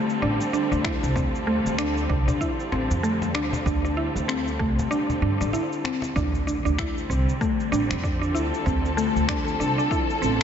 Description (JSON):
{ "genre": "organic downtempo", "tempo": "96 BPM", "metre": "4/4", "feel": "swing 59% on 16ths", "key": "unclear", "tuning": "A4 = 440 Hz", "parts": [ { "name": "warm studio string section", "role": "sustained chords", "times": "0.0-10.4 s", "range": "D3 to A4", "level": "-29 LUFS", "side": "equal", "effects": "sidechain pumping" }, { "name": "mallet-like synth pluck", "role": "arpeggios", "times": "0.0-10.4 s", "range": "A3 to E4", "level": "-26 LUFS", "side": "equal", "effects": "chorus, ping-pong delay, slapback echo" }, { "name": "electronic shaker and finger snaps", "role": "drums", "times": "0.1-10.4 s", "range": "none", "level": "-34 LUFS", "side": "left 2 dB", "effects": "overdrive" }, { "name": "upright bass", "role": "bass", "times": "0.2-10.4 s", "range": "A1 to G2", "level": "-27 LUFS", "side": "equal", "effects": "sidechain pumping" }, { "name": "cajon", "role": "percussion", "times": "0.5-6.1 s", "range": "none", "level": "-34 LUFS", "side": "left 1 dB", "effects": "none" }, { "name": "electronic kick drum", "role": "drums", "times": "0.8-10.1 s", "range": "none", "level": "-29 LUFS", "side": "equal", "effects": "overdrive" }, { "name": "impact", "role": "sound effects", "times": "6.2-8.7 s", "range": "none", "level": "-35 LUFS", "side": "equal", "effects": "none" } ], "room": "moderate lush hall reverb, RT60 1.6 s", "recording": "big arena sound, nothing above 7.8 kHz", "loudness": "-22 LUFS", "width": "side -8 dB against mid", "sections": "0.0-6.2 A section; 6.2-10.4 B section", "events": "break 5.5-6.2; impact 6.2-8.7", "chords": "0.0 F69/A" }